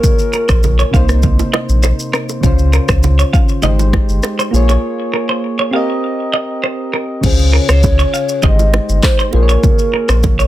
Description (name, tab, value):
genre	afrobeats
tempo	100 BPM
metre	4/4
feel	straight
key	unclear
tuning	A4 = 440 Hz
part	hollow clarinet-like synth lead	melody	0.0-1.5, 7.2-10.5 s	Bb4 to Eb5	-19 LUFS	equal	chorus, plate reverb, ping-pong delay
part	soft electric-piano-like synth keys	accompaniment	0.0-10.5 s	C3 to Eb5	-19 LUFS	equal	chorus
part	deep house drum kit	drums	0.0-10.5 s	crash cymbal, handclaps, kick drum, rim click, shaker	-14 LUFS	equal	soft clipping on snare
part	congas and bongos	percussion	0.0-10.4 s	none	-23 LUFS	right 8 dB	none
part	semi-hollow electric guitar	riff	0.3-10.5 s	Bb4 to F5	-20 LUFS	right 2 dB	ping-pong delay
part	warm sub bass	bass	0.5-10.4 s	G1 to Db2	-12 LUFS	equal	none
room	light reverb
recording	dense, heavily limited modern master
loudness	-11 LUFS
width	side -14 dB against mid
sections	0.0-7.2 A section; 7.2-10.5 B section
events	break 4.8-7.2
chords	0.0 Bbm7; 0.9 Cm7; 2.4 Dbmaj7; 3.6 Abmaj7; 4.5 Bbm7; 5.7 Cm7; 7.2 Dbmaj7; 8.4 Abmaj7; 9.3 Bbm7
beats	| 0.04 0.64 1.24 1.83 | 2.44 3.04 3.63 4.24 | 4.83 5.43 6.04 6.63 | 7.24 7.83 8.44 9.04 | 9.63 10.23